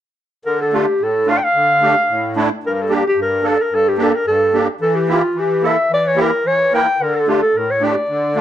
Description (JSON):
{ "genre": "klezmer", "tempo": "110 BPM", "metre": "2/4", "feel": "straight", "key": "D harmonic minor", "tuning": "A4 = 440 Hz", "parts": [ { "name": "mellow clarinet", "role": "melody", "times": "0.5-8.4 s", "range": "F4 to G5", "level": "-15 LUFS", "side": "equal", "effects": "none" }, { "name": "musette accordion", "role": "accompaniment", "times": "0.5-8.4 s", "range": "G2 to Bb4", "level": "-19 LUFS", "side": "right 1 dB", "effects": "none" } ], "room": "moderate studio reverb, RT60 0.7 s", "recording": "dark, warm production", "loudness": "-14 LUFS", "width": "side -11 dB against mid", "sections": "0.4-8.4 A section", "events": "none", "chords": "0.4 Dm; 2.6 Gm; 4.8 Edim; 7.0 D5" }